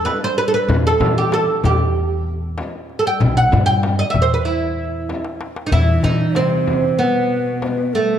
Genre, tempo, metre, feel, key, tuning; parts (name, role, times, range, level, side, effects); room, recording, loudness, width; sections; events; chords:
Arabic maqam ensemble; 95 BPM; 4/4; straight; E maqam nahawand; A4 = 439 Hz
oud; melody; 0.0-8.2 s; A3 to G5; -18 LUFS; right 2 dB
upright bass; bass; 0.0-7.0 s; B1 to E3; -20 LUFS; equal
darbuka; percussion; 0.1-8.2 s; -23 LUFS; left 2 dB
frame drum; percussion; 0.1-7.8 s; -26 LUFS; left 3 dB
breathy mellow ney; second line; 5.7-8.2 s; A4 to E5; -24 LUFS; left 6 dB
rich cello; second line; 5.7-8.2 s; B2 to E3; -22 LUFS; left 1 dB
moderate concert hall reverb, RT60 2.1 s; dark, warm production; -15 LUFS; side -9 dB against mid
0.0-5.7 A section; 5.7-8.2 B section
drum fill 5.1-5.7